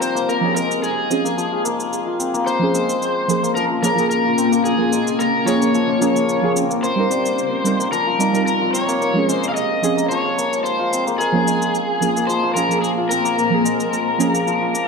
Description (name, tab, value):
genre	organic downtempo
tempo	110 BPM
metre	4/4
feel	swing 53% on 16ths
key	Bb dorian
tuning	A4 = 440 Hz
part	overdriven slide guitar	melody	0.0-14.9 s	Ab4 to F5	-21 LUFS	left 1 dB	vintage 12-bit sampler grit, tape echo
part	deep mellow chord stab	accompaniment	0.0-14.5 s	F3 to Bb4	-22 LUFS	right 4 dB	chorus, tape echo
part	granular cloud pad	sustained chords	0.0-14.9 s	Bb3 to F5	-24 LUFS	left 3 dB	built-in reverb
part	santur	arpeggios	0.0-14.9 s	F3 to F4	-23 LUFS	left 3 dB	low-pass filter, tape echo
part	cabasa	drums	0.0-14.9 s	none	-28 LUFS	right 1 dB	overdrive
room	wet recital hall reverb, RT60 1.5 s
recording	dark, warm production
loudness	-16 LUFS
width	side -4 dB against mid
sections	0.0-14.9 A section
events	none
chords	0.3 Dbmaj7; 2.5 Bbm7; 6.8 Cm7; 9.0 Dbmaj7; 11.2 Bbm7